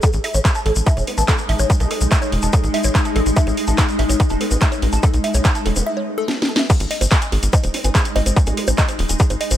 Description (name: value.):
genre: psychedelic trance.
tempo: 144 BPM.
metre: 4/4.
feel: straight.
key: unclear.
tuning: A4 = 437 Hz.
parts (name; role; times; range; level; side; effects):
swarming drone; sustained chords; 0.7-9.6 s; Ab3 to Eb4; -24 LUFS; left 1 dB; built-in reverb, sidechain pumping.
woody wave-folded pluck; riff; 0.0-9.6 s; Ab4 to A5; -26 LUFS; equal; chorus, auto-pan, sidechain pumping, dub echo.
electronic kick drum; drums; 0.0-9.3 s; none; -16 LUFS; equal; distortion, overdrive.
techno drum kit; drums; 0.0-9.6 s; bongos, crash cymbal, handclaps, hi-hat, snare drum; -23 LUFS; right 1 dB; overdrive.
tube shaker; percussion; 0.0-9.6 s; none; -28 LUFS; left 3 dB; none.
tight sequencer bass; bass; 0.1-9.6 s; Eb1 to Cb2; -19 LUFS; equal; none.
vowel-sweep wobble bass; second line; 1.1-8.6 s; Ab3 to C4; -34 LUFS; right 3 dB; lush chorus, sidechain pumping, high-pass filter, dub echo.
room: little or no reverb.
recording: none.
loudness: -15 LUFS.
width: side -12 dB against mid.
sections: 0.0-6.7 A section; 6.7-9.6 B section.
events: filter sweep on synth arpeggio sound 0.0-6.7; break 5.9-6.7; drum fill 6.3-6.7; drop 6.7-9.6.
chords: 0.0 A5; 6.7 Ab5.